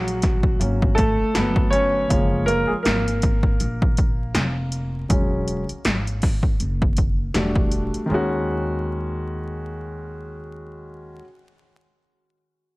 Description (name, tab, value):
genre	hip hop, jazz-hop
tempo	80 BPM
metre	4/4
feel	swing 58% on 16ths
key	unclear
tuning	A4 = 440 Hz
part	warm concert grand piano	accompaniment	0.0-11.2 s	Eb3 to Db5	-24 LUFS	equal	none
part	upright bass	bass	0.0-11.2 s	E1 to Eb2	-27 LUFS	equal	none
part	80s electronic pad drums	drums	0.1-8.1 s	hi-hat, kick drum, snare drum	-21 LUFS	equal	none
room	light reverb, small room ambience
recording	vinyl crackle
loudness	-19 LUFS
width	side -22 dB against mid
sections	0.0-8.1 A section; 8.1-11.1 B section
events	grand piano solo 0.0-8.1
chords	0.0 Ab7sus4; 1.4 Gmaj9; 2.1 Gbmaj9; 5.1 E69; 7.3 Em11; 8.1 Ebm7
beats	0.60 1.35 | 2.10 2.85 3.60 4.35 | 5.10 5.85 6.60 7.35 | 8.10 8.85 9.60 10.35